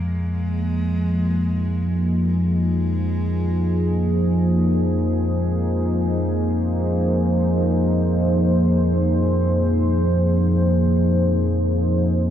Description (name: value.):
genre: ambient.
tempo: free time.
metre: none.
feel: none.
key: unclear.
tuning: A4 = 442 Hz.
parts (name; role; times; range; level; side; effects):
warm cello; melody; 0.0-4.6 s; Ab3; -33 LUFS; right 1 dB; diffuse ambient delay.
deep dark ambient pad; sustained chords; 0.0-12.3 s; F3 to C5; -22 LUFS; equal; chorus, built-in reverb.
deep rumbling drone; drone; 0.0-12.3 s; F2 to F3; -20 LUFS; equal; built-in reverb.
room: wet cathedral reverb, RT60 5.4 s.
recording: cassette tape.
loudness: -18 LUFS.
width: side -10 dB against mid.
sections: 0.0-12.3 A section.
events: fade-in on cello 0.0-12.3; filter sweep on synth drone 0.0-12.3.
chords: 0.0 Fm.